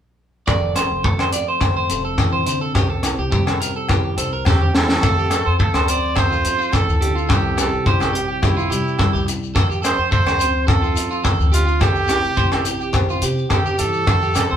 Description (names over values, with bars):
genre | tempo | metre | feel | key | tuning
highlife guitar band | 106 BPM | 4/4 | straight | F major | A4 = 441 Hz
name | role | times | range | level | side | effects
nylon-string guitar | accompaniment | 0.5-14.6 s | C3 to C5 | -27 LUFS | left 3 dB | none
electric guitar at the edge of break-up | arpeggios | 0.5-14.6 s | F4 to D5 | -23 LUFS | right 3 dB | none
upright bass | bass | 0.5-14.6 s | F1 to F3 | -24 LUFS | equal | none
tight funk drum kit | drums | 0.5-14.5 s | hi-hat, kick drum, rim click, snare drum | -19 LUFS | equal | none
agogo bells | percussion | 0.5-14.5 s | none | -29 LUFS | left 4 dB | none
shekere | percussion | 0.5-14.5 s | none | -30 LUFS | left 7 dB | none
bright trumpet | melody | 4.5-14.6 s | E4 to D5 | -22 LUFS | right 3 dB | none
congas | percussion | 14.4-14.5 s | none | -26 LUFS | right 2 dB | none
room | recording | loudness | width
moderate studio reverb, RT60 0.5 s | band playing live in one room | -16 LUFS | side -9 dB against mid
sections
0.5-5.0 A section; 5.0-14.6 B section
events
drum fill 4.5-5.0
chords
0.5 F; 2.8 C; 5.0 F; 7.3 C; 9.6 F; 11.8 C